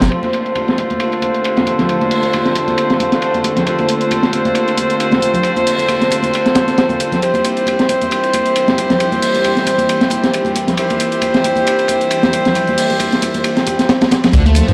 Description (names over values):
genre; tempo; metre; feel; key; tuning
breakbeat, breaks; 135 BPM; 4/4; swing 55% on 16ths; D minor; A4 = 440 Hz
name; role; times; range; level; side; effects
dark chamber string section; sustained chords; 0.0-14.7 s; D3 to C5; -23 LUFS; equal; sidechain pumping
distorted electric guitar; riff; 0.0-0.1, 14.3-14.7 s; C3 to A3; -26 LUFS; equal; distortion, tape echo
saturated sub bass; bass; 0.0-0.1, 14.3-14.7 s; G1 to G2; -14 LUFS; equal; tube saturation
crunchy breakbeat drum kit; drums; 0.0-14.7 s; hi-hat, kick drum, ride cymbal, snare drum; -20 LUFS; equal; low-pass filter on kick, low-pass filter on cymbals, low-pass filter on hats, low-pass filter on snare, low-pass filter on room
congas; percussion; 0.0-14.7 s; none; -24 LUFS; equal; none
bright horn section; stabs; 0.1-14.3 s; D3 to C5; -19 LUFS; equal; low-pass filter, tape echo
electronic hi-hat; drums; 0.1-14.7 s; none; -29 LUFS; equal; low-pass filter on snare, low-pass filter on hats
room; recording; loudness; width
moderate small room reverb, RT60 0.5 s; dry, gritty hardware recording; -15 LUFS; mono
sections
0.1-14.3 A section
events
none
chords
0.1 Dm7; 7.2 C